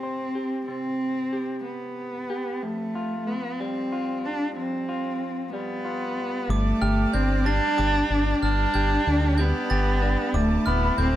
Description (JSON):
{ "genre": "post-rock", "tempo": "62 BPM (dotted quarters)", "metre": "6/8", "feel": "straight", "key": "unclear", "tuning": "A4 = 444 Hz", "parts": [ { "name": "dark cello", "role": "melody", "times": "0.0-11.2 s", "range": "A3 to D4", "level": "-26 LUFS", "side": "equal", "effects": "tape echo" }, { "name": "electric guitar through a small old amp", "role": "arpeggios", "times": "0.0-11.2 s", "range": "D2 to C5", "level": "-31 LUFS", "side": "left 1 dB", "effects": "tape echo" }, { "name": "bright symphonic string section", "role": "sustained chords", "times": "6.5-11.2 s", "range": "E4 to D6", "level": "-38 LUFS", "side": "left 2 dB", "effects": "none" }, { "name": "glockenspiel with brass mallets", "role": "arpeggios", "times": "6.5-11.2 s", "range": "D6 to A6", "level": "-32 LUFS", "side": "right 6 dB", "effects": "tape echo" }, { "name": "growling fingered electric bass", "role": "bass", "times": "6.5-11.2 s", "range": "D1 to D2", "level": "-24 LUFS", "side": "equal", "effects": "overdrive" } ], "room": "small room ambience", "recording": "none", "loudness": "-23 LUFS", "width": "side -13 dB against mid", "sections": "0.0-6.5 A section; 6.5-11.2 B section", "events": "none", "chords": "0.0 C5; 2.6 Fsus2; 6.5 Gsus2; 10.3 Dmadd9", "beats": "| 0.68 1.65 | 2.63 3.60 | 4.57 5.53 | 6.50 7.46 | 8.43 9.39 | 10.35" }